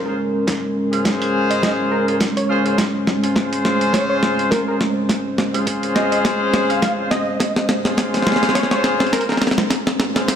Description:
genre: glitch hop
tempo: 104 BPM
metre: 4/4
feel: swing 56% on 16ths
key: Bb minor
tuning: A4 = 438 Hz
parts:
  - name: dark analog pad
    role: sustained chords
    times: 0.0-10.4 s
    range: Ab3 to C5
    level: -22 LUFS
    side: right 1 dB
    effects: chorus, sidechain pumping
  - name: warm horn section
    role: stabs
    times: 0.0-10.4 s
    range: Db4 to C5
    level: -22 LUFS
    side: left 2 dB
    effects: sidechain pumping, low-pass filter, ping-pong delay
  - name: plucky unison lead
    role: melody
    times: 0.1-9.4 s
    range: Bb4 to F5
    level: -25 LUFS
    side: right 1 dB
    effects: ping-pong delay
  - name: boom bap sampler-style drum kit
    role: drums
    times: 0.5-10.4 s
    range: hi-hat, snare drum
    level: -20 LUFS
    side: equal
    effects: small room ambience
  - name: electronic kick drum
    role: drums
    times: 0.5-10.4 s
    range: none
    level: -33 LUFS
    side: equal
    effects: none
room: moderate lush hall reverb, RT60 2.1 s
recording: faint mains hum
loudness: -16 LUFS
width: side -8 dB against mid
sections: 0.0-10.4 A section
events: build-up 0.0-10.4; drum fill 0.0-10.4; filter sweep on digital synth lead 0.0-10.4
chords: 0.0 Bbm7

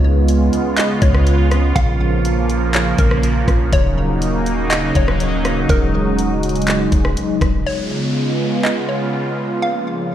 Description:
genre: hip hop, atmospheric cloud-rap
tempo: 122 BPM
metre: 4/4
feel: half-time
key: Eb minor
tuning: A4 = 440 Hz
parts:
  - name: hollow square pluck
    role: melody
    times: 0.0-10.1 s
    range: Bb4 to F5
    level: -25 LUFS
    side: left 1 dB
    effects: chorus, digital delay
  - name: sweeping resonant pad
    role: sustained chords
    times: 0.0-10.1 s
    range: Db3 to F4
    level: -18 LUFS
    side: right 1 dB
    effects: chorus, sidechain pumping
  - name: clean 808-style bass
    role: bass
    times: 0.0-7.7 s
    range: Eb1 to Db2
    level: -18 LUFS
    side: equal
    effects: none
  - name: wind-like tuned noise texture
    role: texture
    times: 0.0-10.1 s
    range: Bb3 to Eb5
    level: -30 LUFS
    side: equal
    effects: built-in reverb
  - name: smooth R&B drum kit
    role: drums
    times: 0.3-8.8 s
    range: handclaps, hi-hat, kick drum, rim click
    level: -19 LUFS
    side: equal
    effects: none
  - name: downlifter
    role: sound effects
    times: 7.7-10.1 s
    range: none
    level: -28 LUFS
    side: equal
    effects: none
room: digital ambience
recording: played on a big sound system in a bare room, stone room reverb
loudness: -14 LUFS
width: side -11 dB against mid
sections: 0.0-7.7 A section; 7.7-10.1 B section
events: none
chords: 0.0 Db7; 1.8 Bbm; 3.7 Ebm7; 7.7 Db7; 9.6 Bbm

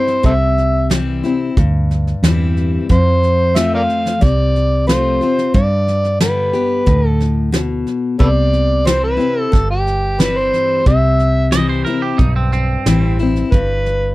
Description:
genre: honky-tonk and classic country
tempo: 90 BPM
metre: 4/4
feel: straight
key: C major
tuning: A4 = 440 Hz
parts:
  - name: overdriven harmonica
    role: melody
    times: 0.0-14.1 s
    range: G4 to F5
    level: -17 LUFS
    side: right 1 dB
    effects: none
  - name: picked steel-string acoustic guitar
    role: accompaniment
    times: 0.0-14.1 s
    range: F2 to G4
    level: -19 LUFS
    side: left 4 dB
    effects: none
  - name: soft brush drum kit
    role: drums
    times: 0.1-13.9 s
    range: hi-hat, kick drum, snare drum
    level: -16 LUFS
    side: right 1 dB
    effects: none
  - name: vintage muted fingered electric bass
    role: bass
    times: 0.2-14.1 s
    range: G1 to G2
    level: -16 LUFS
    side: right 1 dB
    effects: none
  - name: twangy electric guitar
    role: second line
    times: 11.5-13.2 s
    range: C4 to Eb5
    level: -22 LUFS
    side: right 4 dB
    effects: tape echo
room: little or no reverb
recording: dry, close 1970s-style studio recording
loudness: -13 LUFS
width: side -18 dB against mid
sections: 0.0-14.1 A section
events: none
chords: 0.0 C; 2.9 F; 5.5 G; 8.2 C; 13.5 G

